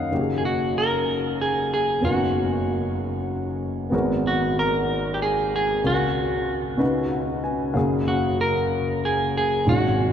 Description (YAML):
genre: slow gospel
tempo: 63 BPM (dotted quarters)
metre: 6/8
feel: straight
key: F# major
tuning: A4 = 440 Hz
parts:
  - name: dark grand piano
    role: accompaniment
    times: 0.0-10.1 s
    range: F#1 to G#5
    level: -23 LUFS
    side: equal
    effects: none
  - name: clean electric guitar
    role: melody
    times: 0.4-10.1 s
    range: F#4 to A#4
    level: -24 LUFS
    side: equal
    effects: none
room: wet cathedral reverb, RT60 5.1 s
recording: recorded in a church or concert hall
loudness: -21 LUFS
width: side -8 dB against mid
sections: 0.1-10.1 A section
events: grand piano fill 6.8-7.8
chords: 0.1 F#69; 2.0 Bmaj7/F#; 3.9 G#m9; 5.8 F#/C#; 6.8 C#9sus4; 7.8 F#maj9